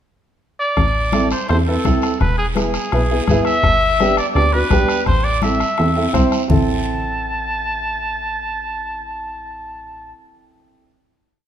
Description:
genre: latin, cumbia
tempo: 167 BPM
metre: 4/4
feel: straight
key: A minor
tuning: A4 = 439 Hz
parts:
  - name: warm trumpet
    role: melody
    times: 0.6-10.1 s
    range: G#4 to A5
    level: -20 LUFS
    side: equal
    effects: none
  - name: plucky analog bass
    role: bass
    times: 0.8-10.1 s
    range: E1 to E2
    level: -21 LUFS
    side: equal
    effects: none
  - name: bombo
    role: percussion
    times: 0.8-6.6 s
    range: none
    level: -23 LUFS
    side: left 3 dB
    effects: none
  - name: congas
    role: percussion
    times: 0.8-6.6 s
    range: none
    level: -26 LUFS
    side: left 2 dB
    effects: none
  - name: guiro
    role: percussion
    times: 0.8-6.6 s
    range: none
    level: -32 LUFS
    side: right 5 dB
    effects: none
  - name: warm upright piano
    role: accompaniment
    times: 1.1-10.9 s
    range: B3 to C5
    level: -20 LUFS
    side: right 2 dB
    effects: none
room: moderate recital hall reverb, RT60 1.4 s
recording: minimal, uncompressed stereo recording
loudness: -15 LUFS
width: side -10 dB against mid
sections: 0.0-0.8 pickup bar; 0.8-6.5 A section; 6.5-9.4 final chord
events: none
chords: 0.0 N.C.; 0.8 Am; 2.2 E; 3.6 G; 5.1 Am

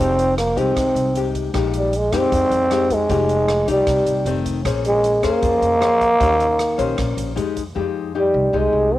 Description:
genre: bossa nova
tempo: 154 BPM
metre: 4/4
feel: straight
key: F minor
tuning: A4 = 440 Hz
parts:
  - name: growling trombone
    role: melody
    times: 0.0-9.0 s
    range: G3 to C4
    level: -17 LUFS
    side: right 1 dB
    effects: none
  - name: nylon-string guitar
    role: accompaniment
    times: 0.0-9.0 s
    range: F2 to C5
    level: -23 LUFS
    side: left 7 dB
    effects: cassette tape
  - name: upright bass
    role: bass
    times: 0.0-9.0 s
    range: F1 to F2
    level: -25 LUFS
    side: right 1 dB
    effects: none
  - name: swinging big-band drum kit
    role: drums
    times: 0.2-7.7 s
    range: hi-hat, kick drum, rim click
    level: -29 LUFS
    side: right 1 dB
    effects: cassette tape
room: moderate booth ambience, RT60 0.2 s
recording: home recording on cassette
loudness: -16 LUFS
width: side -14 dB against mid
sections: 0.0-7.8 A section; 7.8-9.0 A section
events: none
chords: 0.0 Fm9; 1.5 Bb13sus4; 3.1 Fm9; 4.3 F7; 4.6 Bbm9; 6.2 Eb6; 7.4 Fm9

